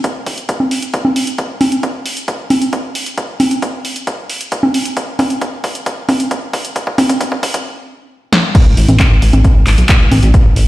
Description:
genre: uplifting trance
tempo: 134 BPM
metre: 4/4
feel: straight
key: unclear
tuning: A4 = 439 Hz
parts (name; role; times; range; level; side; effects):
- electronic kick drum; drums; 0.0-10.4 s; none; -14 LUFS; equal; high-pass filter on kick
- punchy analog drum machine; drums; 0.0-10.7 s; congas, crash cymbal, handclaps, hi-hat, snare drum; -15 LUFS; equal; sidechain pumping on hats, sidechain pumping on perc, sidechain pumping on cymbals
- plucky analog bass; bass; 8.7-10.7 s; A1 to B1; -10 LUFS; equal; sidechain pumping
room: moderate lush hall reverb, RT60 2.1 s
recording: played on a big sound system in a bare room, stone room reverb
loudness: -12 LUFS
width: side -16 dB against mid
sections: 0.0-8.5 A section; 8.5-10.7 B section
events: build-up 0.0-8.5; drum fill 1.4-7.7, 8.3; drop 8.5-10.7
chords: none

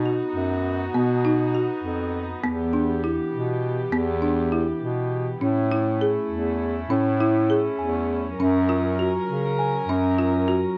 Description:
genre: contemporary instrumental, chamber music in an uneven meter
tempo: 201 BPM (eighths)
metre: 5/8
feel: straight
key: unclear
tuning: A4 = 439 Hz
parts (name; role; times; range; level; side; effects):
- dark studio string section; sustained chords; 0.0-10.8 s; E3 to A#4; -32 LUFS; equal; none
- clear bass clarinet; bass; 0.0-10.6 s; E2 to C#3; -27 LUFS; equal; none
- small celesta; texture; 0.0-2.0, 4.5-10.8 s; A4 to A#5; -37 LUFS; equal; none
- folk marimba with medium hard mallets; arpeggios; 0.1-10.8 s; B3 to G#4; -27 LUFS; equal; none
room: moderate studio reverb, RT60 0.6 s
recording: cassette tape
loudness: -24 LUFS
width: mono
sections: 0.0-10.8 A section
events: none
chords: 0.0 B; 2.4 Em; 5.4 A; 8.4 F#

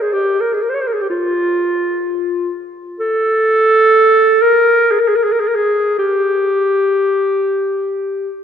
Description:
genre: classical, free, expressive piece for unaccompanied clarinet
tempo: 50-66 BPM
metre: 3/4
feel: rubato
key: unclear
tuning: A4 = 440 Hz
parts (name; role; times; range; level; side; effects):
- warm clarinet; solo; 0.0-8.3 s; F4 to Db5; -12 LUFS; equal; none
room: wet church reverb, RT60 3.5 s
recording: nothing above 10.8 kHz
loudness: -12 LUFS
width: side -8 dB against mid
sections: 0.0-8.4 A section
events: none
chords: none

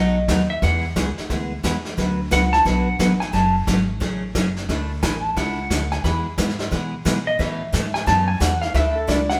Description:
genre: country, western swing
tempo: 177 BPM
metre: 4/4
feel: swing 63% on 8ths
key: unclear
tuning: A4 = 439 Hz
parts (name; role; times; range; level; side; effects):
- clean lap steel guitar; melody; 0.0-9.4 s; A4 to B5; -24 LUFS; equal; none
- picked steel-string acoustic guitar; accompaniment; 0.0-9.2 s; B2 to B4; -26 LUFS; equal; none
- upright bass; bass; 0.0-9.4 s; F#1 to B2; -27 LUFS; equal; none
- vintage brush drum kit; drums; 0.3-9.4 s; brushed snare drum, hi-hat, kick drum, snare drum; -28 LUFS; equal; none
room: wet stone room reverb, RT60 1.1 s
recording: band playing live in one room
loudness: -21 LUFS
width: mono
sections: 0.0-9.4 A section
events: electric slide guitar solo 0.0-9.4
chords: 0.0 B7; 0.6 E; 2.0 D6; 3.3 F#madd9; 4.7 Dsus2; 6.0 E; 7.4 Aadd9; 8.7 Dsus2

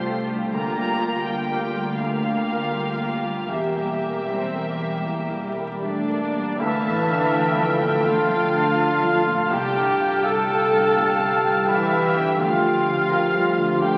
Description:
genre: cinematic, emotional film score for orchestra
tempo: 76-85 BPM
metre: 4/4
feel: rubato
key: D minor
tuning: A4 = 440 Hz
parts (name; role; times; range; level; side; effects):
- rich studio violin section; melody; 0.0-14.0 s; E5 to C6; -34 LUFS; equal; none
- dark studio violin section; second line; 0.0-14.0 s; G4 to A5; -31 LUFS; equal; none
- felt-muted upright piano; accompaniment; 0.0-14.0 s; C2 to Bb4; -31 LUFS; equal; none
- warm studio viola section; accompaniment; 0.0-14.0 s; E3 to A4; -28 LUFS; equal; none
- dark studio cello section; bass; 0.0-14.0 s; C2 to E2; -37 LUFS; equal; none
- dark studio double bass section; bass; 0.0-14.0 s; E1 to D2; -37 LUFS; equal; none
- clear clarinet; second line; 5.8-14.0 s; D4 to A4; -31 LUFS; equal; none
- mellow concert flute; second line; 6.6-14.0 s; G5 to A5; -29 LUFS; equal; none
- warm cor anglais; second line; 6.6-14.0 s; F5; -29 LUFS; equal; none
- dark French horn section; sustained chords; 6.6-14.0 s; D3 to A4; -28 LUFS; equal; none
room: wet scoring stage reverb, RT60 1.5 s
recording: very old 78 rpm record, vinyl crackle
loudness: -22 LUFS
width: mono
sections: 0.0-6.6 A section; 6.6-14.0 A section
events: none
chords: 0.0 Fadd9/C; 0.5 Bb6/D; 3.5 Edim; 6.6 Dmadd9; 9.5 Fadd9/C; 12.4 Bb6/D

